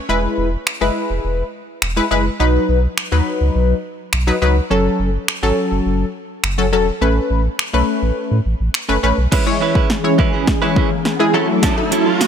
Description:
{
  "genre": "dance-pop",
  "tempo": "104 BPM",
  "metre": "4/4",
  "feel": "straight",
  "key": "E major",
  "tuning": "A4 = 440 Hz",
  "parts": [
    { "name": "funky polysynth comp", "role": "accompaniment", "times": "0.1-12.1 s", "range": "F#3 to C#5", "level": "-18 LUFS", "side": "left 2 dB", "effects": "chorus, sidechain pumping" },
    { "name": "warm sub bass", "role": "bass", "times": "0.1-9.3 s", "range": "E1 to A2", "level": "-17 LUFS", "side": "equal", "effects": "sidechain pumping" },
    { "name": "deep house drum kit", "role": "drums", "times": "0.7-12.3 s", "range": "crash cymbal, finger snaps, hi-hat, kick drum, snare drum", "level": "-20 LUFS", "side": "equal", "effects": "overdrive" },
    { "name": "warm analog pad", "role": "sustained chords", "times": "9.3-12.3 s", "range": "E3 to G#4", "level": "-20 LUFS", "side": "equal", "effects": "chorus, sidechain pumping" },
    { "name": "direct-recorded clean electric guitar", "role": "riff", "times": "9.3-12.2 s", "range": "F#3 to B4", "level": "-21 LUFS", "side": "right 7 dB", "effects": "lush chorus" },
    { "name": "riser", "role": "sound effects", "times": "10.3-12.3 s", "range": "none", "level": "-24 LUFS", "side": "equal", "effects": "none" }
  ],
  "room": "light reverb",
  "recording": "none",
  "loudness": "-15 LUFS",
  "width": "side -8 dB against mid",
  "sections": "0.0-9.3 A section; 9.3-12.3 B section",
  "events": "build-up 9.3-12.3; drum fill 9.3-12.3; riser 10.3-12.3",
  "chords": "0.1 E; 2.4 B; 4.7 F#m; 7.0 Aadd9; 9.3 E6; 11.3 F#m7"
}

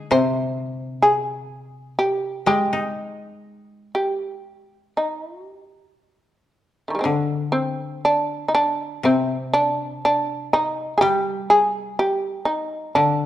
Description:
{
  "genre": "japanese traditional, Japanese chamber music",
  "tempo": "56-66 BPM",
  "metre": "4/4",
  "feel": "rubato",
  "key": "unclear",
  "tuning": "A4 = 440 Hz",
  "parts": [
    { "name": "shamisen", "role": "melody", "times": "0.0-13.3 s", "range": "D3 to C5", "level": "-20 LUFS", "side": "right 1 dB", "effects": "none" },
    { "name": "koto", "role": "accompaniment", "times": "0.0-13.3 s", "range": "C3 to Ab4", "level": "-25 LUFS", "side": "left 3 dB", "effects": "none" }
  ],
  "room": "moderate recital hall reverb, RT60 1.5 s",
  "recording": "dark, warm production",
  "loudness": "-19 LUFS",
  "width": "side -12 dB against mid",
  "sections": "0.0-7.1 A section; 7.1-13.3 B section",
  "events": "none",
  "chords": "none"
}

